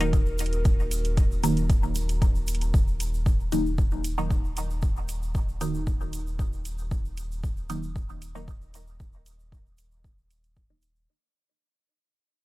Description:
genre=dub techno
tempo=115 BPM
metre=4/4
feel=straight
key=Eb minor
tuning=A4 = 441 Hz
part: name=dark analog pad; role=sustained chords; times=0.0-2.7 s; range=Bb3 to Bb4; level=-37 LUFS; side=equal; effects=chorus, sidechain pumping
part: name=filtered dub chord stab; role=stabs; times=0.0-10.9 s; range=Eb3 to Eb4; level=-30 LUFS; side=equal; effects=phaser, sidechain pumping, dub echo
part: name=soft dub sub bass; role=bass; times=0.0-11.1 s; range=Eb1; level=-30 LUFS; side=equal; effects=sidechain pumping
part: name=electronic hi-hat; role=drums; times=0.0-10.9 s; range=none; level=-38 LUFS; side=right 4 dB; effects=none
part: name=egg shaker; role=percussion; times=0.0-11.1 s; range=none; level=-42 LUFS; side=right 3 dB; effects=none
part: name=electronic kick drum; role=drums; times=0.1-10.7 s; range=none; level=-24 LUFS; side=equal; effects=none
room=little or no reverb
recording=none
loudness=-24 LUFS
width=side -18 dB against mid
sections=0.0-2.7 A section; 2.7-11.1 B section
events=filter sweep on synth stab 0.0-2.7; fade-out 2.7-11.1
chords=0.0 Ebm

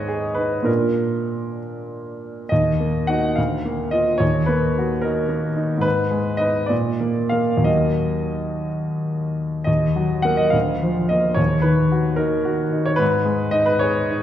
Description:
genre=classical, romantic character piece for solo piano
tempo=58-75 BPM (dotted quarters)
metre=6/8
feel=rubato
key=Eb minor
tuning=A4 = 442 Hz
part: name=clear baby grand piano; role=solo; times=0.0-14.2 s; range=D2 to Gb5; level=-18 LUFS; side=equal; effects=none
room=wet scoring stage reverb, RT60 1.6 s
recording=heard from further back in the room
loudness=-18 LUFS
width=side -11 dB against mid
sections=0.0-9.7 A section; 9.7-14.2 A section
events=none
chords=0.0 Abm; 0.7 Bb; 2.5 Ebm; 3.4 Bb/D; 4.2 Ebm; 5.8 Abm; 6.7 N.C.; 7.7 Ebm; 10.5 Bb/D; 11.4 Ebm; 13.0 Abm

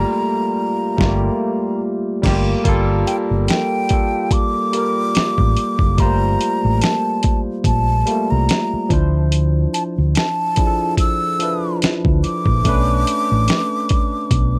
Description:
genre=R&B, neo-soul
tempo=72 BPM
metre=4/4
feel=swing 56% on 16ths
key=unclear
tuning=A4 = 438 Hz
part: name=breathy hollow jazz flute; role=melody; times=0.0-14.6 s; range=G5 to E6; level=-24 LUFS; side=equal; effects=none
part: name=barky tine electric piano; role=accompaniment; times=0.0-14.6 s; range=F3 to C5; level=-23 LUFS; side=equal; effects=overdrive, analog chorus
part: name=fingered electric bass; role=bass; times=0.0-14.6 s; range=F#1 to D2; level=-20 LUFS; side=equal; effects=none
part: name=dusty soul sampler-style drum kit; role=drums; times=1.0-14.5 s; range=crash cymbal, hi-hat, kick drum, snare drum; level=-20 LUFS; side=equal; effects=overdrive
room=light reverb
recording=dry, close 1970s-style studio recording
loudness=-18 LUFS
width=mono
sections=0.0-2.6 A section; 2.6-14.6 B section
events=band accent 0.0-2.6; drum fill 14.3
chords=0.0 Gm9; 8.9 Dm9; 12.7 Bm9

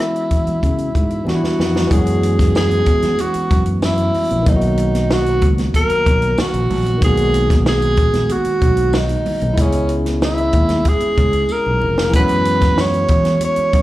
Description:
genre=lush 1970s-style soul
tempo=94 BPM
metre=4/4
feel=straight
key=unclear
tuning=A4 = 440 Hz
part: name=breathy tenor saxophone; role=melody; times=0.0-13.8 s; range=C#4 to C#5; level=-18 LUFS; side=right 1 dB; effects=slapback echo
part: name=overdriven tine electric piano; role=accompaniment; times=0.0-13.8 s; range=D#3 to G#4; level=-22 LUFS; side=left 1 dB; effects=slapback echo
part: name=compact cocktail drum kit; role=drums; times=0.0-13.8 s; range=hi-hat, kick drum, rim click, snare drum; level=-18 LUFS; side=equal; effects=none
part: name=fingered electric bass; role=bass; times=0.3-13.8 s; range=E#1 to C#3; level=-19 LUFS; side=equal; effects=none
part: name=congas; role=percussion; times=0.5-13.8 s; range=none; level=-29 LUFS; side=right 3 dB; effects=none
part: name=tambourine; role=percussion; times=2.6-12.9 s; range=none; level=-38 LUFS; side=left 3 dB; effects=none
room=studio reverb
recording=live gig heard through the venue's PA, club reverb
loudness=-14 LUFS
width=side -16 dB against mid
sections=0.0-1.9 A section; 1.9-13.8 B section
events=drum fill 1.3-1.9, 11.5-12.1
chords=0.0 F#9sus4; 1.3 Em7; 1.9 F#9sus4; 4.5 Bmaj7; 7.0 G#m9; 9.6 C#m7; 12.1 F#9sus4

